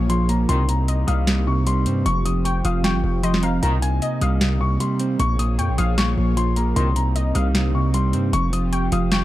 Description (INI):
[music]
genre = hip hop, trap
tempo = 153 BPM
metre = 4/4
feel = half-time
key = C phrygian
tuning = A4 = 440 Hz
[part]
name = dark baby grand piano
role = melody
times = 0.0-9.2 s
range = Ab5 to Eb6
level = -27 LUFS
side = left 4 dB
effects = low-pass filter
[part]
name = mellow electric guitar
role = accompaniment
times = 0.0-9.2 s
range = F2 to C4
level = -23 LUFS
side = right 2 dB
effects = low-pass filter
[part]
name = warm analog pad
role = sustained chords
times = 0.0-9.2 s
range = C3 to Db5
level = -28 LUFS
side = equal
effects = chorus
[part]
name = distorted 808-style bass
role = bass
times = 0.0-9.2 s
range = F1 to G2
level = -21 LUFS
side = equal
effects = distortion
[part]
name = booming analog drum machine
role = drums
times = 0.1-9.2 s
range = hi-hat, snare drum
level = -25 LUFS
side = equal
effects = overdrive
[part]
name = mellow brass ensemble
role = stabs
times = 0.5-0.6, 3.6-3.8, 6.8-6.9 s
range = Bb2 to Eb3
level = -29 LUFS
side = equal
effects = none
[part]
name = warbly dusty pluck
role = second line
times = 0.9-9.2 s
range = Eb5 to G5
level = -32 LUFS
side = left 3 dB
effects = chorus, tape echo
[sound]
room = little or no reverb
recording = dark, warm production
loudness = -18 LUFS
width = side -15 dB against mid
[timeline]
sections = 0.0-9.2 A section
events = none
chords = 0.5 Cm7; 2.1 Fsus2; 3.6 Cm7; 5.2 Bbm7; 6.8 Cm7; 8.3 Fsus2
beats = 0.10 | 0.49 0.88 1.27 1.67 | 2.06 2.45 2.84 3.23 | 3.63 4.02 4.41 4.80 | 5.20 5.59 5.98 6.37 | 6.76 7.16 7.55 7.94 | 8.33 8.72 9.12